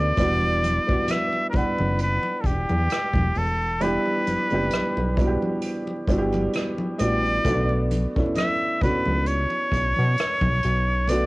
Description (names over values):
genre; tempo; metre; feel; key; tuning
R&B, neo-soul; 66 BPM; 4/4; swing 54% on 16ths; E dorian; A4 = 444 Hz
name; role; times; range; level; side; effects
trumpet with straight mute; melody; 0.0-11.3 s; G4 to E5; -25 LUFS; equal; cassette tape
dark upright piano; accompaniment; 0.0-11.3 s; G3 to F#5; -26 LUFS; right 1 dB; cassette tape
fat analog bass; bass; 0.0-11.3 s; E1 to B2; -24 LUFS; equal; none
unplugged drum kit; drums; 0.2-11.3 s; hi-hat, kick drum, rim click; -28 LUFS; equal; cassette tape
congas; percussion; 0.2-11.3 s; none; -32 LUFS; left 1 dB; none
room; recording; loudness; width
little or no reverb; home recording on cassette, vinyl crackle; -20 LUFS; side -22 dB against mid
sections
0.0-11.3 A section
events
none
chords
0.2 Em9; 7.5 Bm9